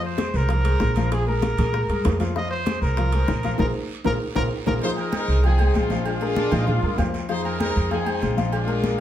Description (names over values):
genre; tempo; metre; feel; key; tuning
latin, salsa; 194 BPM; 4/4; straight; unclear; A4 = 441 Hz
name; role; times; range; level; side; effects
warm trumpet; melody; 0.0-4.7 s; Ab4 to Eb5; -28 LUFS; right 1 dB; none
clear grand piano; accompaniment; 0.0-8.9 s; F3 to F5; -27 LUFS; left 4 dB; none
upright bass; bass; 0.0-8.9 s; Bb1 to Bb2; -23 LUFS; right 1 dB; none
congas; percussion; 0.0-9.0 s; none; -29 LUFS; left 1 dB; none
bongos and cowbell; percussion; 0.2-9.0 s; none; -33 LUFS; left 4 dB; none
guiro; percussion; 0.2-9.0 s; none; -41 LUFS; right 6 dB; none
timbales and agogo bells; percussion; 0.2-8.8 s; none; -34 LUFS; right 4 dB; none
bright horn section; melody; 4.8-9.0 s; Ab3 to C5; -27 LUFS; equal; none
bright trombone section; second line; 6.4-9.0 s; Bb3 to F4; -31 LUFS; right 1 dB; none
room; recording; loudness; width
wet studio reverb, RT60 0.8 s; heard from further back in the room; -20 LUFS; side -11 dB against mid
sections
0.0-4.8 A section; 4.8-9.0 B section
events
band accent 3.6-4.8; drum fill 4.0-4.8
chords
0.0 Fm; 1.1 Bb5; 2.3 Fm; 3.6 Bb5; 4.8 Fm7; 6.1 Bb7; 7.3 Fm7